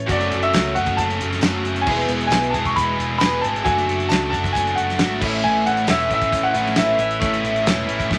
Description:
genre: folk rock and heartland rock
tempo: 135 BPM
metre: 4/4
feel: straight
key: A major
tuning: A4 = 440 Hz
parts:
  - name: bright concert grand piano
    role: melody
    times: 0.0-8.2 s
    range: D5 to C#6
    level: -24 LUFS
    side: equal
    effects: none
  - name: clear baby grand piano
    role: accompaniment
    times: 0.0-8.2 s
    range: E4 to C#6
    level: -35 LUFS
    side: equal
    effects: none
  - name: picked twelve-string acoustic guitar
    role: accompaniment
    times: 0.0-8.2 s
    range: E2 to G#4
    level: -30 LUFS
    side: equal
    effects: none
  - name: picked electric bass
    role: bass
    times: 0.0-8.2 s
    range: E1 to C#2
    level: -30 LUFS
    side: equal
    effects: none
  - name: biting overdriven guitar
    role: riff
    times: 0.1-8.2 s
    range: E2 to G#4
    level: -25 LUFS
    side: equal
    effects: none
  - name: damped 70s drum kit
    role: drums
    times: 0.1-8.2 s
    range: crash cymbal, hi-hat, kick drum, snare drum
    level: -26 LUFS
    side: equal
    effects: none
  - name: tambourine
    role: percussion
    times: 0.5-7.8 s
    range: none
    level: -40 LUFS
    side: equal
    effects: none
room: moderate studio ambience, RT60 0.5 s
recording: none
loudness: -20 LUFS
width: mono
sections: 0.0-8.2 A section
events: none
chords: 0.1 F#m; 1.9 E; 3.7 D/F#; 5.2 A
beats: | 0.08 0.53 0.98 1.42 | 1.87 2.31 2.76 3.21 | 3.65 4.10 4.54 4.99 | 5.43 5.88 6.32 6.76 | 7.21 7.66 8.10

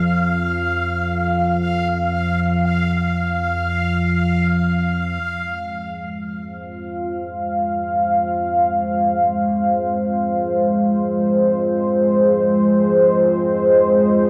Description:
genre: dark ambient drone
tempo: free time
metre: none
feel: none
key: F minor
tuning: A4 = 439 Hz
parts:
  - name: analog drone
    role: drone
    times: 0.0-14.3 s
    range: F2 to F3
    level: -26 LUFS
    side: equal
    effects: chorus
  - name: bubbling stepped-filter texture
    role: texture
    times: 0.0-5.3 s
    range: F5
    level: -26 LUFS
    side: equal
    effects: chorus, built-in reverb
  - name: dark analog pad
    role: sustained chords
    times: 5.2-14.3 s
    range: Ab3 to F5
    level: -18 LUFS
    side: equal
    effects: chorus
room: wet cathedral reverb, RT60 6.4 s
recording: none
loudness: -19 LUFS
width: mono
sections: 0.0-5.2 A section; 5.2-14.3 B section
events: fade-in on synth drone 5.2-14.3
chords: 0.0 N.C.; 5.2 Fm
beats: free time

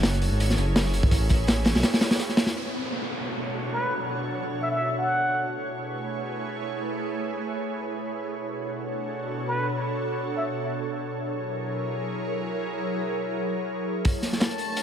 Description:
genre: drum and bass, jungle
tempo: 167 BPM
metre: 4/4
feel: swing 55% on 16ths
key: B dorian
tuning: A4 = 440 Hz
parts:
  - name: ethereal airy pad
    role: sustained chords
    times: 0.0-14.8 s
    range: B2 to C#5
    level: -29 LUFS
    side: right 1 dB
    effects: ensemble chorus, built-in reverb
  - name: dark detuned saw bass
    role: bass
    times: 0.0-1.8 s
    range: F#1 to B1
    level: -24 LUFS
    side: equal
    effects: none
  - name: crunchy breakbeat drum kit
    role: drums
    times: 0.0-2.5, 14.0-14.8 s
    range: hi-hat, kick drum, snare drum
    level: -23 LUFS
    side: equal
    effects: dub echo
  - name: crunchy breakbeat drum kit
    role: drums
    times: 0.0-2.5, 14.0-14.8 s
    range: hi-hat, snare drum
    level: -35 LUFS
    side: right 1 dB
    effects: high-pass filter on hats, high-pass filter on snare, high-pass filter on room
  - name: downlifter and riser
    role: sound effects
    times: 2.6-5.4, 14.5-14.8 s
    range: none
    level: -34 LUFS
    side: equal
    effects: none
  - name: trumpet with plunger mute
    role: melody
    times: 3.7-5.5, 9.5-10.4 s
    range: B4 to F#5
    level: -29 LUFS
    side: equal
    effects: vintage 12-bit sampler grit, dub echo
  - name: drifting glass-harmonics texture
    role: texture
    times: 14.3-14.8 s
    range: A3 to A5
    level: -32 LUFS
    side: left 4 dB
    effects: chorus, built-in reverb
room: moderate plate reverb, RT60 1.3 s, studio reverb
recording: echo-heavy mix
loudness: -24 LUFS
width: side -9 dB against mid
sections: 0.0-2.6 A section; 2.6-14.1 B section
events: drop 0.0-2.6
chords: 0.0 F#7; 1.1 Amaj9; 2.6 Bm7; 5.4 Amaj9; 8.3 Bm7; 11.2 F#7; 14.1 Bm9/A (rootless)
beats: 0.04 0.40 0.76 | 1.11 1.48 1.83 2.19 | 2.55 2.91 3.27 3.63 | 3.99 4.35 4.71 5.07 | 5.43 5.79 6.14 6.50 | 6.86 7.22 7.58 7.94 | 8.30 8.66 9.02 9.38 | 9.74 10.10 10.46 10.82 | 11.18 11.54 11.89 12.25 | 12.61 12.97 13.33 13.69 | 14.05 14.41 14.77

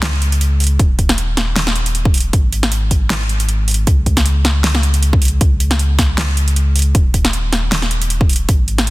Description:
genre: future bass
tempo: 156 BPM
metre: 4/4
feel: swing 55% on 16ths, half-time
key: unclear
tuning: A4 = 442 Hz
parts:
  - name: saturated sub bass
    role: bass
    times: 0.0-8.9 s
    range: Eb1 to Db2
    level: -16 LUFS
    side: equal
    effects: sidechain pumping
  - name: pop drum kit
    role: drums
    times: 0.0-8.9 s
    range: hi-hat, snare drum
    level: -18 LUFS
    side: equal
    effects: studio reverb
  - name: electronic kick drum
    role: drums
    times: 0.8-8.6 s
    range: none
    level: -14 LUFS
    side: equal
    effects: studio reverb
room: digital ambience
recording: dense, heavily limited modern master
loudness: -12 LUFS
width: side -20 dB against mid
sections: 0.0-8.9 A section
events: none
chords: none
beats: 0.03 0.41 | 0.80 1.18 1.56 1.95 | 2.33 2.72 3.10 3.49 | 3.87 4.26 4.64 5.03 | 5.41 5.79 6.18 6.56 | 6.95 7.33 7.72 8.10 | 8.49 8.87

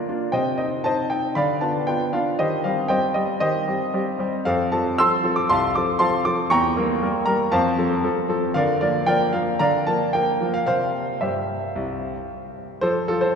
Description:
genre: classical-period piano sonatina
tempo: 116 BPM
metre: 4/4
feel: straight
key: F major from 4.5 s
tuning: A4 = 440 Hz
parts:
  - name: clear grand piano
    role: solo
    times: 0.0-13.4 s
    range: C2 to E6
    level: -19 LUFS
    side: equal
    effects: none
room: wet cathedral reverb, RT60 5.6 s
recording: recorded in a church or concert hall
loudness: -19 LUFS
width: side -6 dB against mid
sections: 0.0-12.8 A section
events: none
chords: 0.3 Cm; 1.4 Bdim/D; 2.4 Cm/Eb; 4.5 F; 6.5 Edim7; 7.5 F; 8.6 Bb/D; 10.7 C; 12.8 F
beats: | 0.33 0.84 1.36 1.88 | 2.39 2.90 3.42 3.93 | 4.45 4.97 5.48 5.99 | 6.50 7.02 7.53 8.04 | 8.56 9.08 9.60 10.13 | 10.67 11.21 11.74 12.28 | 12.81 13.34

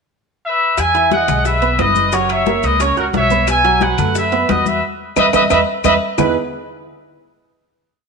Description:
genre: latin, salsa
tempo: 178 BPM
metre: 4/4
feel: straight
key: E major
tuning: A4 = 440 Hz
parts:
  - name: bright trumpet section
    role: melody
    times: 0.5-6.3 s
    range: F#4 to G#5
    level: -16 LUFS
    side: left 1 dB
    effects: none
  - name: upright bass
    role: bass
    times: 0.8-6.3 s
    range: F#1 to F#2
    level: -22 LUFS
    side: left 1 dB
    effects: none
  - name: bongos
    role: percussion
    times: 0.8-6.3 s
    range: none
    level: -27 LUFS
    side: left 13 dB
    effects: none
  - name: claves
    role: percussion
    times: 0.8-6.3 s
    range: none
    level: -28 LUFS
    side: left 15 dB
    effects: none
  - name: congas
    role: percussion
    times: 0.8-6.3 s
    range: none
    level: -24 LUFS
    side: left 12 dB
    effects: none
  - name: maracas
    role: percussion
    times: 0.8-6.3 s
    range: none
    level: -33 LUFS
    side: left 15 dB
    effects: none
  - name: timbales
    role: percussion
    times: 0.8-6.3 s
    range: none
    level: -29 LUFS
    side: right 10 dB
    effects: none
  - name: dark grand piano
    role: accompaniment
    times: 0.9-6.3 s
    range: E3 to F#6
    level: -19 LUFS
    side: right 8 dB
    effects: none
room: wet echo chamber reverb, RT60 1.5 s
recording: 1960s-style stereo with parts hard left and right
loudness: -13 LUFS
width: side -4 dB against mid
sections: 0.0-0.8 pickup bar; 0.8-6.2 A section; 6.2-7.5 final chord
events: drum fill 4.8-6.2; band accent 4.8-6.2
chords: 0.0 N.C.; 0.8 Emaj7; 2.1 F#7; 3.5 B7sus4; 4.8 E5; 6.2 Emaj7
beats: 0.11 0.44 | 0.78 1.12 1.45 1.79 | 2.13 2.46 2.80 3.14 | 3.48 3.81 4.15 4.49 | 4.83 5.17 5.50 5.84 | 6.18

